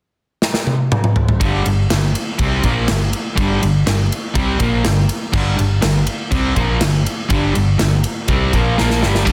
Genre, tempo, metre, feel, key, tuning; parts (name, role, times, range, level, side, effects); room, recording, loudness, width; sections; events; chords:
hard rock; 122 BPM; 4/4; straight; G minor; A4 = 440 Hz
big rock drum kit; drums; 0.4-9.3 s; crash cymbal, kick drum, ride cymbal, snare drum, toms; -21 LUFS; equal
crunchy overdriven guitar; riff; 1.4-9.3 s; G2 to C4; -24 LUFS; equal
distorted electric guitar; riff; 1.4-9.3 s; G2 to C4; -23 LUFS; equal; distortion
hollow-body short-scale fingered electric bass; bass; 1.4-9.3 s; G1 to C2; -22 LUFS; equal
heavy high-gain guitar; riff; 9.3 s; G2 to G3; -20 LUFS; equal; distortion
small room ambience; dense, heavily limited modern master; -17 LUFS; mono
0.0-1.4 A section; 1.4-9.3 B section
drum fill 0.4-1.4, 8.8-9.3
0.0 N.C.; 1.4 Gm